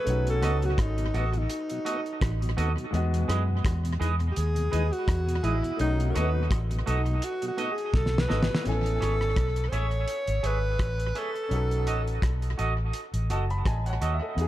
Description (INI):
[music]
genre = lovers rock reggae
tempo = 84 BPM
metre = 4/4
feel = swing 55% on 16ths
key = unclear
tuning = A4 = 443 Hz
[part]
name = breathy alto saxophone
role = melody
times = 0.0-14.5 s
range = D#4 to C#5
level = -32 LUFS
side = equal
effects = tape echo
[part]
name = clear grand piano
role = accompaniment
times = 0.0-14.5 s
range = G#3 to B5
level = -37 LUFS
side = left 3 dB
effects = tape echo
[part]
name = vintage muted fingered electric bass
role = bass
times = 0.1-14.5 s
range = F#1 to F#2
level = -27 LUFS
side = equal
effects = none
[part]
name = cloth-damped thuddy drum kit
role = drums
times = 0.1-14.5 s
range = hi-hat, kick drum, rim click, snare drum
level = -30 LUFS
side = equal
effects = tape echo
[part]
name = mellow tonewheel organ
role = accompaniment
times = 0.3-8.6 s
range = E2 to D#4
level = -38 LUFS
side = left 2 dB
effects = chorus vibrato, slow rotary speaker
[part]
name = twangy electric guitar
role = stabs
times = 0.4-14.2 s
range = F#4 to E5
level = -34 LUFS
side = right 4 dB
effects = wide subtle chorus, tape echo
[sound]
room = small room ambience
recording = dark, warm production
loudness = -24 LUFS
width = side -14 dB against mid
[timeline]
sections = 0.0-8.7 A section; 8.7-14.5 B section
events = alto saxophone solo 0.0-8.7; drum fill 7.9-8.7; grand piano fill 12.9-14.4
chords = 0.1 B7; 2.9 Emaj7; 5.8 B7; 8.7 Amaj7; 11.5 B7